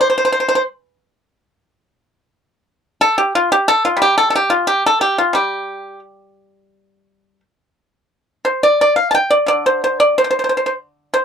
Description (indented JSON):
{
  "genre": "chinese traditional, Chinese solo plucked strings",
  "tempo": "89 BPM",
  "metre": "4/4",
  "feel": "rubato",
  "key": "G shang mode",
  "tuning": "A4 = 440 Hz",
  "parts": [
    { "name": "pipa", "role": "solo", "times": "0.0-11.2 s", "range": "D3 to A5", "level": "-13 LUFS", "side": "equal", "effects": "none" }
  ],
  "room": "light reverb",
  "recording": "dry, close 1970s-style studio recording",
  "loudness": "-13 LUFS",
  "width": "side -7 dB against mid",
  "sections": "0.0-11.2 A section",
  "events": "none",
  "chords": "none"
}